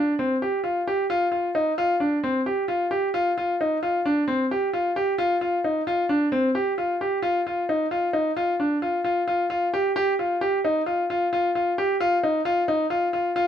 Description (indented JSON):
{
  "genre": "contemporary instrumental, contemporary",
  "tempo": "264 BPM (eighths)",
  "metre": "9/8",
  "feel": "straight",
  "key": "unclear",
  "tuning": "A4 = 440 Hz",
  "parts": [
    { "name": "bright concert grand piano", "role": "solo", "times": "0.0-13.5 s", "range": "C4 to G4", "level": "-21 LUFS", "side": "equal", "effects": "none" }
  ],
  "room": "moderate studio reverb, RT60 0.8 s",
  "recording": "none",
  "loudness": "-21 LUFS",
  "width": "side -9 dB against mid",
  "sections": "0.0-7.9 A section; 7.9-13.5 B section",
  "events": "none",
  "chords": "none",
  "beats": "0.18 0.41 0.64 0.87 1.09 1.32 1.55 | 1.77 2.00 2.23 2.46 2.68 2.91 3.14 3.37 3.59 | 3.82 4.05 4.28 4.50 4.73 4.96 5.18 5.41 5.64 | 5.87 6.09 6.32 6.55 6.78 7.00 7.23 7.46 7.68 | 7.91 8.14 8.37 8.59 8.82 9.05 9.27 9.50 9.73 | 9.96 10.18 10.41 10.64 10.86 11.09 11.32 11.54 11.77 | 12.00 12.22 12.45 12.68 12.91 13.13 13.36"
}